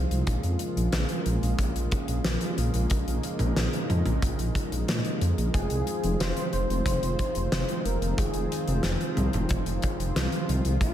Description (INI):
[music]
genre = synthwave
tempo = 91 BPM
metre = 4/4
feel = straight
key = F minor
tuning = A4 = 440 Hz
[part]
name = lush unison pad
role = sustained chords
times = 0.0-10.9 s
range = Db3 to F4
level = -31 LUFS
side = equal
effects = chorus
[part]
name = dark detuned saw bass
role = bass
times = 0.0-10.9 s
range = F1 to Bb2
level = -27 LUFS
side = equal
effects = none
[part]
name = huge arena drum kit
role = drums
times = 0.1-10.9 s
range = hi-hat, snare drum, toms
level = -32 LUFS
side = equal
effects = gated reverb
[part]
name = kick drum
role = drums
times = 0.3-10.9 s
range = none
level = -30 LUFS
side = equal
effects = none
[part]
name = wide unison lead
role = melody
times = 5.5-10.9 s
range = F4 to C5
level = -32 LUFS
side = equal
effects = ping-pong delay
[sound]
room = light reverb, small room ambience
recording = none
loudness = -24 LUFS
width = side -11 dB against mid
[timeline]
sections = 0.0-10.9 A section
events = none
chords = 0.3 Bbm7; 5.5 Fm7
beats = | 0.27 0.93 1.59 2.25 | 2.90 3.56 4.22 4.88 | 5.54 6.20 6.86 7.52 | 8.18 8.84 9.50 10.16 | 10.82